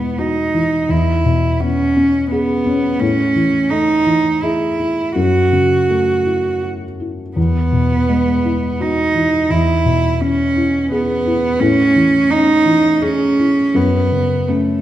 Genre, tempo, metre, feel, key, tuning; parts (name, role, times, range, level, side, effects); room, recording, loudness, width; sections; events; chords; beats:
neoclassical piano and strings; 84 BPM; 3/4; rubato; A4 = 440 Hz
warm cello; second line; 0.0-14.8 s; A3 to F#4; -15 LUFS; right 3 dB
felt-muted upright piano; accompaniment; 0.0-14.8 s; E2 to G#4; -17 LUFS; left 2 dB
wet recital hall reverb, RT60 1.3 s; -13 LUFS; side -12 dB against mid
0.0-14.8 A section
0.0 Eadd9; 0.9 C#m7/E; 3.0 Amaj7; 5.2 F#m7; 7.4 Eadd9; 9.5 C#m7/E; 11.6 Amaj7; 13.8 F#m
0.20 | 0.91 1.62 2.32 | 3.01 3.71 4.43 | 5.16 5.90 6.63 | 7.37 8.09 8.80 | 9.51 10.21 10.92 | 11.61 12.31 13.02 | 13.76 14.50